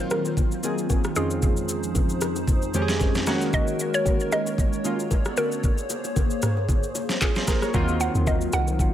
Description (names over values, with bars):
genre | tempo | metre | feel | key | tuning
amapiano | 114 BPM | 4/4 | swing 55% on 16ths | Eb dorian | A4 = 443 Hz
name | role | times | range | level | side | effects
hollow square pluck | melody | 0.0-8.9 s | Ab4 to Gb5 | -29 LUFS | right 1 dB | chorus, dub echo
warm analog keys | accompaniment | 0.0-8.9 s | F2 to Db5 | -27 LUFS | equal | chorus, dub echo
hollow soft pad | sustained chords | 0.0-8.9 s | Eb3 to D5 | -30 LUFS | equal | ensemble chorus
smooth R&B drum kit | drums | 0.1-8.9 s | handclaps, kick drum, rim click, shaker, snare drum, toms | -24 LUFS | equal | none
bongos and congas | percussion | 0.1-8.9 s | none | -35 LUFS | left 3 dB | dub echo
deep log drum bass | bass | 7.7-8.9 s | C2 to Eb2 | -25 LUFS | equal | none
room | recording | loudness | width
light reverb, digital ambience | echo-heavy mix | -21 LUFS | side -11 dB against mid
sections
0.0-8.9 A section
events
none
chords
0.0 Ebm69; 1.2 Dbmaj9/F; 3.3 Ab9sus4; 5.1 Bm9; 5.6 Bbm9; 7.7 Ebm69